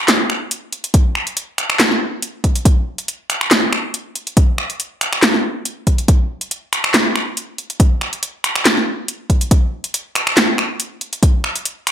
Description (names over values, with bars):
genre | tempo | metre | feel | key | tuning
dubstep | 140 BPM | 4/4 | swing 54% on 16ths, half-time | none | none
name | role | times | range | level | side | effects
deep house drum kit | drums | 0.1-11.9 s | finger snaps, handclaps, hi-hat, snare drum | -15 LUFS | equal | overdrive
electronic kick drum | drums | 0.9-11.3 s | none | -12 LUFS | equal | overdrive
room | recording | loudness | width
light reverb | bright 1980s-style digital production | -15 LUFS | side -10 dB against mid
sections
0.0-11.9 A section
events
none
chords
none